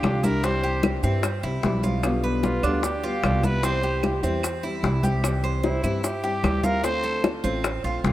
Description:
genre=latin, Cuban son and guajira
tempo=150 BPM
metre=4/4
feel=straight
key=unclear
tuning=A4 = 440 Hz
part: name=growling trumpet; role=melody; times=0.0-7.2 s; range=E4 to C5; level=-30 LUFS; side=equal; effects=none
part: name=nylon-string guitar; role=accompaniment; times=0.0-8.1 s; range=B2 to G4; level=-28 LUFS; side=left 1 dB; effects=none
part: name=Cuban tres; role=arpeggios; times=0.0-8.1 s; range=C4 to C5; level=-29 LUFS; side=right 2 dB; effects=none
part: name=upright bass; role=bass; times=0.0-8.1 s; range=A1 to G2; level=-27 LUFS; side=equal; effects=none
part: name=bongos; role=percussion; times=0.0-8.1 s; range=none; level=-30 LUFS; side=left 5 dB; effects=none
part: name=claves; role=percussion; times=0.0-7.8 s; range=none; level=-38 LUFS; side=right 5 dB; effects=none
part: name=congas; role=percussion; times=0.0-8.1 s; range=none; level=-28 LUFS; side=equal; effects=none
part: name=maracas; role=percussion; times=0.0-8.1 s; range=none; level=-38 LUFS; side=right 5 dB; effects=none
room=light reverb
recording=rough home demo mix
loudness=-21 LUFS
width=side -14 dB against mid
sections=0.0-8.1 A section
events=none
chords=0.4 C; 2.0 G7/B; 3.6 C; 6.8 Dm7

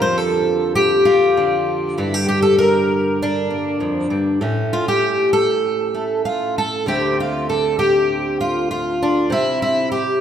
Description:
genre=folk, solo fingerstyle acoustic guitar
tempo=98 BPM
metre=4/4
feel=straight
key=D minor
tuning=A4 = 440 Hz
part: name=fingerpicked twelve-string acoustic guitar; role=solo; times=0.0-10.2 s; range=D2 to C5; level=-16 LUFS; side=equal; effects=none
room=moderate concert hall reverb, RT60 2.4 s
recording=recorded in a church or concert hall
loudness=-16 LUFS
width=side -9 dB against mid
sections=0.0-6.9 A section; 6.9-10.2 B section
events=none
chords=0.0 Dm/F; 2.0 Gm; 4.4 A; 6.9 Dm7; 9.3 N.C.

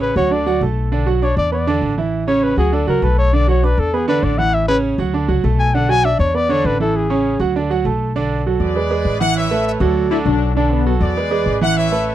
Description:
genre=latin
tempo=199 BPM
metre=4/4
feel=straight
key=A major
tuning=A4 = 439 Hz
part: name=mellow trumpet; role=melody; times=0.0-7.4 s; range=G#4 to G#5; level=-18 LUFS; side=left 3 dB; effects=none
part: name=bright concert grand piano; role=accompaniment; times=0.0-12.1 s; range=C#3 to D6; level=-18 LUFS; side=right 5 dB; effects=none
part: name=upright bass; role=bass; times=0.0-12.1 s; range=A1 to E2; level=-19 LUFS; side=left 1 dB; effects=none
part: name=brilliant trumpet section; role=melody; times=8.6-12.1 s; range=F#4 to F#5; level=-21 LUFS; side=left 2 dB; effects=none
part: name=brilliant trombone section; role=second line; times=10.1-10.9 s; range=B3 to E4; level=-19 LUFS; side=left 12 dB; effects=none
room=little or no reverb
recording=dry, close 1970s-style studio recording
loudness=-14 LUFS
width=side -12 dB against mid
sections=0.0-8.2 A section; 8.2-12.1 B section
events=trumpet solo 0.0-8.2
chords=0.3 D; 0.9 Bm; 1.5 E5; 2.1 A; 2.7 D; 3.3 Bm; 3.9 E5; 4.5 A; 5.1 D; 5.7 Bm; 6.3 E5; 6.9 A; 7.6 D; 8.2 Bm7; 8.8 E7; 9.4 Aadd9; 10.0 D; 10.6 Bm7; 11.2 E7

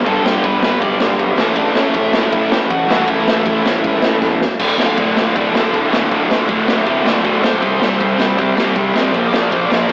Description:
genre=punk rock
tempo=159 BPM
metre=4/4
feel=straight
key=unclear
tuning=A4 = 440 Hz
part: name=distorted electric guitar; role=riff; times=0.0-9.9 s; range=D2 to C4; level=-24 LUFS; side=equal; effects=overdrive
part: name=raw garage guitar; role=riff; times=0.0-9.9 s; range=D2 to C4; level=-26 LUFS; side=equal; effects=none
part: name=sludgy distorted guitar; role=riff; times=0.0-9.9 s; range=D2 to A4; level=-21 LUFS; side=equal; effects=overdrive
part: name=dark smooth lead guitar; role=melody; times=0.1-9.9 s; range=C#4 to D6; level=-24 LUFS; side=equal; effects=overdrive
part: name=fuzz picked electric bass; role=bass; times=0.1-9.9 s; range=D1 to G2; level=-26 LUFS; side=equal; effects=overdrive
part: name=raw garage drum kit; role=drums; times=0.1-9.9 s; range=crash cymbal, kick drum, ride cymbal, snare drum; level=-20 LUFS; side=equal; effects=none
room=light reverb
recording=rough rehearsal-room recording, warm saturation, AM radio sound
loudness=-15 LUFS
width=mono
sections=0.0-4.6 A section; 4.6-9.9 B section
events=drum fill 4.2-4.6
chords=0.0 G; 1.4 A; 4.6 D5; 7.6 C5; 9.1 Bb5

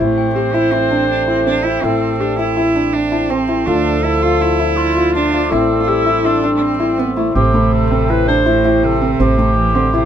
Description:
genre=contemporary instrumental, chamber music in an uneven meter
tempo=163 BPM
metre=5/4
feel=straight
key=A minor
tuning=A4 = 444 Hz
part: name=warm clarinet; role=melody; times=0.0-10.1 s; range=F4 to C5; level=-19 LUFS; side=equal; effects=none
part: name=rich cello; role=second line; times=0.0-10.1 s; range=A2 to F4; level=-20 LUFS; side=right 5 dB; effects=none
part: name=pedal harmonium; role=sustained chords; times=0.0-10.1 s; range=D3 to C5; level=-24 LUFS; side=right 1 dB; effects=none
part: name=felt-muted upright piano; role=arpeggios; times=0.0-10.1 s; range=A3 to A4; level=-17 LUFS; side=left 2 dB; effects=none
part: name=upright bass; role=bass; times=0.0-10.1 s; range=A1 to D2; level=-20 LUFS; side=right 1 dB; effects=none
part: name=glockenspiel with rubber mallets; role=texture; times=0.2-8.9 s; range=G5 to E6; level=-27 LUFS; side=left 5 dB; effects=none
room=light reverb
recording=close, detailed microphones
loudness=-13 LUFS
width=side -9 dB against mid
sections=0.0-7.4 A section; 7.4-10.1 B section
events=none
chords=0.0 Am7; 3.7 Dm; 5.5 Am7

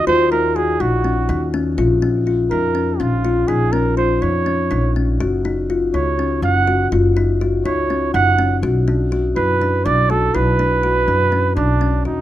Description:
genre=contemporary instrumental, chamber music in an uneven meter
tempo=246 BPM (eighths)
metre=7/8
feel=straight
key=unclear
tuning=A4 = 439 Hz
part: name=warm flugelhorn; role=melody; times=0.0-12.2 s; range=D4 to Gb5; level=-19 LUFS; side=right 5 dB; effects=none
part: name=upright bass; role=bass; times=0.0-12.2 s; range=Gb1 to F#2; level=-19 LUFS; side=equal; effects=none
part: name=kalimba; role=arpeggios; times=0.1-12.2 s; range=Db4 to Gb4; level=-19 LUFS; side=left 4 dB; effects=none
room=light reverb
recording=close, detailed microphones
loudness=-15 LUFS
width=side -13 dB against mid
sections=0.0-12.1 A section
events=none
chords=0.0 Ebm; 1.8 Bbm; 5.2 Gb5; 8.6 Bm

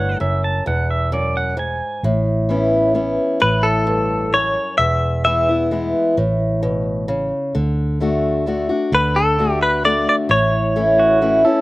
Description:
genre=honky-tonk and classic country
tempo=131 BPM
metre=3/4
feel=straight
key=D major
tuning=A4 = 440 Hz
part: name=direct-recorded clean electric guitar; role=melody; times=0.0-0.2, 3.4-5.7, 8.9-11.2 s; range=A4 to E5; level=-17 LUFS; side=left 1 dB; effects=none
part: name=pedal steel guitar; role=second line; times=0.0-2.0, 11.0-11.6 s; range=F#4 to A5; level=-23 LUFS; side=right 3 dB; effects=none
part: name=picked steel-string acoustic guitar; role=accompaniment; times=0.0-11.6 s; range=E2 to F#4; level=-18 LUFS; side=left 1 dB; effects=none
part: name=vintage muted fingered electric bass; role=bass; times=0.0-11.4 s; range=E1 to D2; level=-22 LUFS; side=right 1 dB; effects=none
room=little or no reverb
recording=recorded outdoors, with no room sound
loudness=-15 LUFS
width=side -19 dB against mid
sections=0.0-8.9 A section; 8.9-11.6 A section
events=none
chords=0.0 A; 0.7 E; 2.0 Aadd9; 3.4 A; 4.8 E; 6.2 A; 7.5 D; 10.3 A

